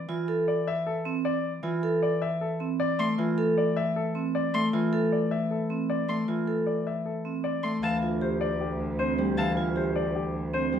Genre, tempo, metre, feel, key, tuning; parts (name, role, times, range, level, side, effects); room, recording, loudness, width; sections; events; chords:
classical, minimalist pattern music; 155 BPM; 4/4; straight; D minor; A4 = 442 Hz
Celtic harp; accompaniment; 0.0-10.8 s; E3 to A3; -29 LUFS; left 1 dB
vibraphone with hard mallets; arpeggios; 0.1-10.8 s; C4 to A4; -29 LUFS; right 4 dB
clear grand piano; melody; 0.5-10.8 s; G4 to F5; -31 LUFS; left 6 dB
rich violin; arpeggios; 3.0-9.5 s; A5 to C6; -32 LUFS; left 1 dB
rich cello; bass; 7.8-10.8 s; D2; -32 LUFS; right 1 dB
wet large studio reverb, RT60 0.8 s; heard from further back in the room; -25 LUFS; side -8 dB against mid
0.0-7.8 A section; 7.8-10.8 B section
0.0 Dm7; 7.8 Dm9